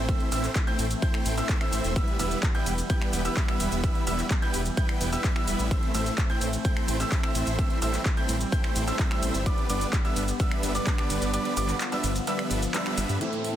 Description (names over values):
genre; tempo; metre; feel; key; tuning
EDM, festival progressive house; 128 BPM; 4/4; straight; A minor; A4 = 440 Hz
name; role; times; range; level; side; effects
lush unison pad; sustained chords; 0.0-13.6 s; A2 to E5; -35 LUFS; equal; chorus, sidechain pumping
clear baby grand piano; arpeggios; 0.0-13.2 s; D6 to G6; -35 LUFS; right 2 dB; sidechain pumping, tape echo
big supersaw lead; riff; 0.0-13.6 s; G3 to G5; -31 LUFS; right 1 dB; sidechain pumping, low-pass filter, tape echo
wide detuned saw bass; bass; 0.0-13.2 s; E1 to G2; -30 LUFS; equal; chorus, sidechain pumping
big-room dance drum kit; drums; 0.1-13.5 s; finger snaps, handclaps, hi-hat, ride cymbal, shaker; -33 LUFS; equal; overdrive, studio reverb
electronic kick drum; drums; 0.1-11.0 s; none; -26 LUFS; equal; overdrive, studio reverb
bright baby grand piano; accompaniment; 13.2-13.6 s; E3 to E4; -33 LUFS; left 2 dB; sidechain pumping
downlifter; sound effects; 13.2-13.6 s; none; -36 LUFS; right 2 dB; none
room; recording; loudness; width
light reverb; dense, heavily limited modern master; -24 LUFS; side -11 dB against mid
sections
0.0-13.2 A section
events
drop 0.0-13.2; kick drops out 11.3-13.2; band accent 12.7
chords
0.0 Am; 2.0 Em; 5.7 Am; 9.5 G